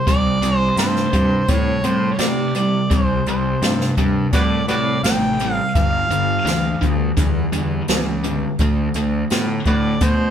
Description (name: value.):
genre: blues rock power trio and southern rock.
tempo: 84 BPM.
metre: 4/4.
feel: straight.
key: unclear.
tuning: A4 = 439 Hz.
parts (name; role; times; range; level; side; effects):
mellow harmonica; melody; 0.0-10.3 s; F#4 to G5; -22 LUFS; right 1 dB; overdrive.
sludgy distorted guitar; riff; 0.0-10.3 s; G2 to B3; -20 LUFS; equal; overdrive.
fuzz picked electric bass; bass; 0.1-10.3 s; G1 to C3; -23 LUFS; equal; overdrive.
jazz brush drum kit; drums; 0.1-10.2 s; hi-hat, kick drum, snare drum; -21 LUFS; equal; none.
room: wet studio reverb, RT60 0.9 s.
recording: band playing live in one room.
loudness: -16 LUFS.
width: side -9 dB against mid.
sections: 0.0-10.3 A section.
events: none.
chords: 0.0 C5; 5.8 G5; 8.6 D5.